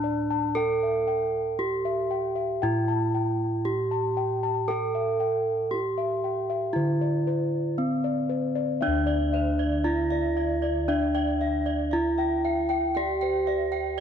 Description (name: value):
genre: Javanese gamelan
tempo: 58 BPM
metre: 4/4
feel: straight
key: D slendro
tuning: A4 = 441 Hz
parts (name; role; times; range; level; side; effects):
- gamelan-type bronze metallophone; melody; 0.0-14.0 s; C4-45c to A4+25c; -26 LUFS; right 2 dB; none
- gamelan-type bossed gongs; arpeggios; 0.0-13.8 s; C5-45c to A5+25c; -30 LUFS; left 10 dB; none
- gamelan-type bossed gongs; bass; 0.0-14.0 s; D2 to A4+25c; -31 LUFS; equal; none
- gamelan-type bronze metallophone; arpeggios; 8.8-14.0 s; C5-45c to G5-35c; -33 LUFS; right 10 dB; none
room: moderate plate reverb, RT60 3.2 s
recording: 1960s-style stereo with parts hard left and right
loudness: -24 LUFS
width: side -8 dB against mid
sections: 0.0-8.8 A section; 8.8-14.0 A section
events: none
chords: none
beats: | 0.55 1.58 2.62 3.65 | 4.69 5.72 6.75 7.79 | 8.82 9.86 10.89 11.93 | 12.96 14.00